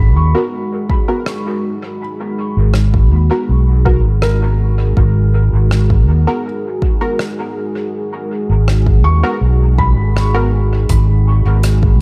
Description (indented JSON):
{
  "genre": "ambient dub",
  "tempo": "81 BPM",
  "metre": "4/4",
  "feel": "straight",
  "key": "G# minor",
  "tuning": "A4 = 440 Hz",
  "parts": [
    { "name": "deep dark ambient pad", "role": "sustained chords", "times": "0.0-12.0 s", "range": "G#3 to F#5", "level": "-25 LUFS", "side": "equal", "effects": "chorus, built-in reverb" },
    { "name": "felt-muted upright piano", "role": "arpeggios", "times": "0.0-12.0 s", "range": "A#4 to C#6", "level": "-28 LUFS", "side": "equal", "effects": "dub echo" },
    { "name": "fingered electric bass", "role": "bass", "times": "0.0-12.0 s", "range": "G#1 to D#2", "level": "-14 LUFS", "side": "equal", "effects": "none" },
    { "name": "filtered dub chord stab", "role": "stabs", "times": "0.3-10.5 s", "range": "B3 to A#4", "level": "-25 LUFS", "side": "equal", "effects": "ensemble chorus, cassette tape, dub echo" },
    { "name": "electronic kick drum", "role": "drums", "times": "0.9-12.0 s", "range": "none", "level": "-18 LUFS", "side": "equal", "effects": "none" },
    { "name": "soft-mallet drum kit", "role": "drums", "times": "1.3-11.8 s", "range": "hi-hat, rim click", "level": "-29 LUFS", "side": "equal", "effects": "dub echo" }
  ],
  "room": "small room ambience",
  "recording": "none",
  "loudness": "-14 LUFS",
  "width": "mono",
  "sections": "0.0-12.0 A section",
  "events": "none",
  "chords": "0.0 G#m9"
}